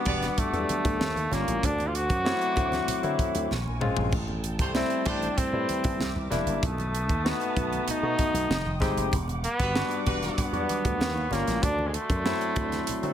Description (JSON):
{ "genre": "polished 1980s jazz-funk pop", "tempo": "96 BPM", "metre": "4/4", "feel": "straight", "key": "unclear", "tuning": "A4 = 440 Hz", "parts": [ { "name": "clear flugelhorn", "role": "melody", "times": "0.0-13.1 s", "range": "G#3 to F#4", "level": "-30 LUFS", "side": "equal", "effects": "digital delay" }, { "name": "barky tine electric piano", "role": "accompaniment", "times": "0.0-13.1 s", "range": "F#3 to B4", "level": "-31 LUFS", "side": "left 3 dB", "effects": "overdrive, wide subtle chorus" }, { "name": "muted studio string section", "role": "sustained chords", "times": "0.0-13.1 s", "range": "G3 to D#6", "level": "-37 LUFS", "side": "right 3 dB", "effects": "none" }, { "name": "clear horn section", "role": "second line", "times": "0.1-0.3, 4.6-5.3, 9.6-10.5 s", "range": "G3 to D5", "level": "-35 LUFS", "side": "right 2 dB", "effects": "none" }, { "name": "slap bass with an envelope filter", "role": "bass", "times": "0.1-13.1 s", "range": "E1 to D3", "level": "-31 LUFS", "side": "equal", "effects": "none" }, { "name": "tight funk drum kit", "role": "drums", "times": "0.1-13.1 s", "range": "hi-hat, kick drum, snare drum, splash cymbal, toms", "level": "-30 LUFS", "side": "right 1 dB", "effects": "none" }, { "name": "congas", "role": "percussion", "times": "0.1-13.0 s", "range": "none", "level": "-41 LUFS", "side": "right 2 dB", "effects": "none" } ], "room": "light reverb", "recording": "none", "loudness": "-24 LUFS", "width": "side -10 dB against mid", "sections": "0.0-13.1 A section", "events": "drum fill 3.5-4.1", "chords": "0.0 Em9; 1.0 D#9; 1.6 D7; 3.5 Bbm7; 4.1 Am7; 6.0 C9; 6.6 B7; 8.5 Fm9; 9.1 Em9; 11.0 D#9; 11.6 D7", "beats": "0.37 1.00 | 1.62 2.25 2.88 3.50 | 4.13 4.75 5.38 6.00 | 6.63 7.25 7.88 8.50 | 9.13 9.75 10.38 11.00 | 11.63 12.25 12.88" }